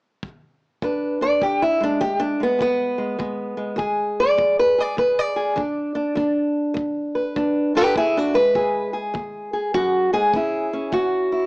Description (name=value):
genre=acoustic country blues, solo or duo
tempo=101 BPM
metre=4/4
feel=swing 64% on 8ths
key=E mixolydian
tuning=A4 = 441 Hz
part: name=kick drum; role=drums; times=0.2-11.1 s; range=none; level=-36 LUFS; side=equal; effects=none
part: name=fingerpicked old ladder-braced acoustic guitar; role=melody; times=0.8-11.5 s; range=E2 to D5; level=-18 LUFS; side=equal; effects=none
room=moderate small room ambience, RT60 0.5 s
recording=small speaker sound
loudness=-18 LUFS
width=side -25 dB against mid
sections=0.8-11.5 A section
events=steel-string acoustic guitar solo 0.8-11.5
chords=0.0 N.C.; 0.8 E7; 10.3 A